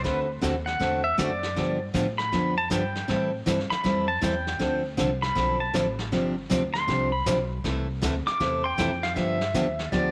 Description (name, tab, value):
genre	country, western swing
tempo	158 BPM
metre	4/4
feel	swing 64% on 8ths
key	unclear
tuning	A4 = 441 Hz
part	pedal steel guitar	melody	0.0-10.1 s	B4 to D6	-30 LUFS	equal	slapback echo
part	picked steel-string acoustic guitar	accompaniment	0.0-10.1 s	C3 to A4	-29 LUFS	equal	none
part	upright bass	bass	0.0-10.1 s	G1 to A2	-35 LUFS	equal	none
part	vintage brush drum kit	drums	0.0-10.1 s	brushed snare drum, hi-hat, kick drum, snare drum	-36 LUFS	equal	none
room	light reverb, small room ambience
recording	none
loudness	-26 LUFS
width	mono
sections	0.0-9.2 A section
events	pedal steel guitar solo 0.0-9.2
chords	0.0 D7; 1.6 G7; 3.1 Am7; 4.6 Dm7; 6.1 G7sus4; 7.6 C6; 9.2 G7